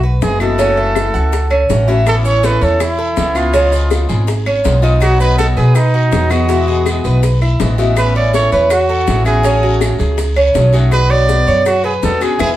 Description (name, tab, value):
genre	latin, Cuban son and guajira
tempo	163 BPM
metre	4/4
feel	straight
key	A major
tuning	A4 = 445 Hz
part	Cuban tres	arpeggios	0.0-12.5 s	C#4 to C#5	-17 LUFS	right 2 dB	none
part	upright bass	bass	0.0-12.5 s	F#1 to B2	-14 LUFS	equal	none
part	clear trumpet	melody	0.2-12.5 s	D#4 to D5	-17 LUFS	right 2 dB	none
part	picked swing-style acoustic guitar	accompaniment	0.2-12.5 s	B2 to G#4	-20 LUFS	left 3 dB	none
part	bongos	percussion	0.2-12.5 s	none	-23 LUFS	left 5 dB	none
part	maracas	percussion	0.2-12.5 s	none	-34 LUFS	right 4 dB	none
part	claves	percussion	0.4-12.5 s	none	-28 LUFS	left 2 dB	none
part	guiro	percussion	2.1-12.5 s	none	-32 LUFS	left 4 dB	none
room	wet studio reverb, RT60 0.7 s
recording	heard from further back in the room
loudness	-11 LUFS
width	side -14 dB against mid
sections	0.0-12.6 A section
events	band accent 12.4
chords	0.0 Eadd9; 0.6 F#m7; 2.1 Aadd9; 3.5 C#7; 5.0 B; 6.5 Eadd9; 8.0 Aadd9; 9.4 F#madd9/A; 10.9 Bmadd9